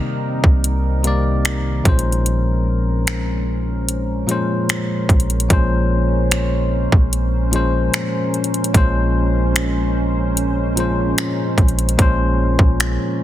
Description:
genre	contemporary R&B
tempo	74 BPM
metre	4/4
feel	straight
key	unclear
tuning	A4 = 440 Hz
part	bell-like tine electric piano	accompaniment	0.0-13.2 s	Bb2 to D5	-20 LUFS	left 2 dB	none
part	deep dark ambient pad	sustained chords	0.0-13.2 s	Eb3 to C5	-25 LUFS	right 2 dB	chorus, built-in reverb, sidechain pumping
part	clean 808-style bass	bass	0.4-13.0 s	Bb1 to C2	-20 LUFS	equal	none
part	trap drum kit	drums	0.4-13.0 s	finger snaps, hi-hat, kick drum	-17 LUFS	equal	soft clipping on snare
room	little or no reverb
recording	dense, heavily limited modern master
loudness	-15 LUFS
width	side -13 dB against mid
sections	0.0-13.2 A section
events	none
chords	0.0 Cm9; 1.9 Bbm9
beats	0.64 1.45 | 2.26 3.07 3.88 4.69 | 5.50 6.31 7.12 7.93 | 8.74 9.56 10.37 11.18 | 11.99 12.80

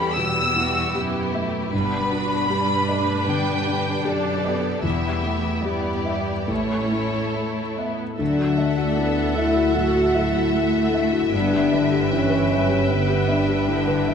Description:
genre	cinematic, emotional film score for orchestra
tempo	77 BPM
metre	4/4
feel	rubato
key	D major from 8.2 s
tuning	A4 = 440 Hz
part	warm symphonic violin section	melody	0.0-14.1 s	C#5 to E6	-28 LUFS	left 1 dB	none
part	rich symphonic violin section	second line	0.0-14.1 s	D4 to E5	-28 LUFS	left 3 dB	none
part	felt-muted upright piano	accompaniment	0.0-14.1 s	D2 to E5	-27 LUFS	equal	none
part	warm symphonic viola section	accompaniment	0.0-14.1 s	G3 to B4	-30 LUFS	right 2 dB	none
part	concert harp	arpeggios	0.0-14.1 s	E2 to G5	-30 LUFS	left 6 dB	none
part	warm symphonic cello section	bass	0.0-14.1 s	E2 to B3	-29 LUFS	right 5 dB	none
part	dark symphonic double bass section	bass	1.7-14.1 s	E1 to D2	-28 LUFS	right 5 dB	none
part	dark French horn section	sustained chords	8.2-14.1 s	B3 to F#4	-22 LUFS	left 3 dB	none
room	moderate concert hall reverb, RT60 2.1 s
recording	none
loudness	-19 LUFS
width	side -7 dB against mid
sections	0.0-8.2 A section; 8.2-14.1 B section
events	none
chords	0.0 Em; 1.7 G; 4.8 Em; 6.5 A; 8.2 Dadd9; 11.3 G6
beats	0.16 0.95 | 1.73 2.50 3.27 4.05 | 4.84 5.65 6.50 7.36 | 8.20 8.99 9.77 10.55 | 11.34 12.13 12.90 13.69

